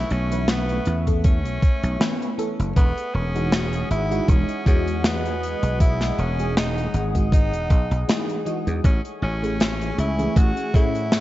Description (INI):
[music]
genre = vaporwave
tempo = 79 BPM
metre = 4/4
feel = swing 55% on 16ths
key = E major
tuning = A4 = 437 Hz
[part]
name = raspy tenor saxophone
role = melody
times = 0.0-11.2 s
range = B3 to F#4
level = -29 LUFS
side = equal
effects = tape echo
[part]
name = warbly tape-like pad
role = sustained chords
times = 0.0-11.2 s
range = A3 to D#6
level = -33 LUFS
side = right 1 dB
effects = chorus, built-in reverb, vintage 12-bit sampler grit
[part]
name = dry thumbed slap bass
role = bass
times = 0.0-11.2 s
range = E1 to A2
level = -24 LUFS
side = equal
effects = none
[part]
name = tight metal drum kit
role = drums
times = 0.1-11.2 s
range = hi-hat, snare drum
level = -25 LUFS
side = left 1 dB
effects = gated reverb
[part]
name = FM electric piano with soft pad layer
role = accompaniment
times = 0.3-11.2 s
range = E3 to D#5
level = -28 LUFS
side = equal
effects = phaser, analog chorus, tape echo
[part]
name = electronic kick drum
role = drums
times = 1.1-10.9 s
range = none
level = -17 LUFS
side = equal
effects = none
[sound]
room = light reverb, small room ambience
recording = nothing above 7.9 kHz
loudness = -19 LUFS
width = side -15 dB against mid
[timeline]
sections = 0.0-11.2 A section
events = none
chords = 0.0 B9sus4; 2.8 Emaj9; 8.8 Amaj7